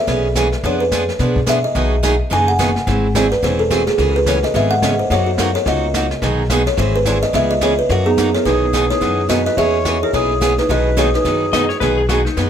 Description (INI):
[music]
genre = country, western swing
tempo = 215 BPM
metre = 4/4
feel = swing 60% on 8ths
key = B major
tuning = A4 = 440 Hz
[part]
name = buzzing kalimba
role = melody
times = 0.0-11.9 s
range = B3 to G#5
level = -18 LUFS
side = equal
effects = none
[part]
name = picked acoustic archtop guitar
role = accompaniment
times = 0.1-12.5 s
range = B2 to G#4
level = -20 LUFS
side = right 3 dB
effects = none
[part]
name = upright bass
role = bass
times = 0.1-12.5 s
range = E1 to Cb3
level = -20 LUFS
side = left 1 dB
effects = none
[part]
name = jazz brush drum kit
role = drums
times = 0.1-12.5 s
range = brushed snare drum, hi-hat, kick drum, snare drum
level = -24 LUFS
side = left 1 dB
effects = none
[part]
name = growling clarinet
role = second line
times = 8.1-11.9 s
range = D#4 to C#5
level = -22 LUFS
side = left 1 dB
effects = none
[part]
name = clean lap steel guitar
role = second line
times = 11.5-12.4 s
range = D#4 to D#5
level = -20 LUFS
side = left 7 dB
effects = none
[sound]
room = light reverb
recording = none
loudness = -14 LUFS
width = side -8 dB against mid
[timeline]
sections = 0.0-8.5 A section; 8.5-12.5 B section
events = kalimba solo 0.0-8.5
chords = 0.0 E6; 0.6 Fdim7; 1.8 B6; 2.9 G#aug7; 4.0 C#m7; 5.1 F#6; 6.2 B6; 6.8 G#aug7; 7.3 C#m7; 7.9 F#6; 8.5 B6; 9.6 E6; 10.7 B6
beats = 0.08 0.36 | 0.64 0.92 1.19 1.47 | 1.75 2.03 2.31 2.59 | 2.87 3.15 3.43 3.71 | 3.98 4.26 4.54 4.82 | 5.10 5.38 5.66 5.94 | 6.22 6.50 6.78 7.06 | 7.34 7.62 7.90 8.18 | 8.46 8.73 9.01 9.29 | 9.57 9.85 10.13 10.41 | 10.69 10.97 11.25 11.53 | 11.81 12.09 12.37